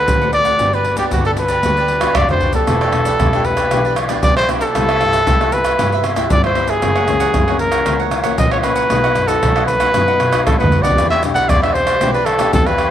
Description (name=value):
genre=samba and choro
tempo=116 BPM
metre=4/4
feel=straight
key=E minor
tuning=A4 = 440 Hz
part: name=warm trumpet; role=melody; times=0.0-12.9 s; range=F#4 to F#5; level=-16 LUFS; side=equal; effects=none
part: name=cavaquinho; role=accompaniment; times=0.0-12.9 s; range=D4 to F#5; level=-24 LUFS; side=right 10 dB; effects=none
part: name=nylon-string guitar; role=accompaniment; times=0.0-12.9 s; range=F#2 to G4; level=-24 LUFS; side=left 11 dB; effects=none
part: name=dark double bass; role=bass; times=0.1-12.9 s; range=E1 to B2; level=-23 LUFS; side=equal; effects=none
part: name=maracas, surdo, pandeiro and tamborim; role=percussion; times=0.1-12.9 s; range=none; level=-18 LUFS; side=equal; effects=none
room=moderate plate reverb, RT60 2.7 s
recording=1960s-style stereo with parts hard left and right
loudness=-13 LUFS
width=side -10 dB against mid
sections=0.0-2.7 A section; 2.7-12.9 B section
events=drum fill 2.0-2.7, 10.5-11.0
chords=0.0 D7; 0.6 Gmaj7; 2.7 Em7; 4.8 Cmaj7; 6.8 F#7; 8.9 B; 11.0 Em7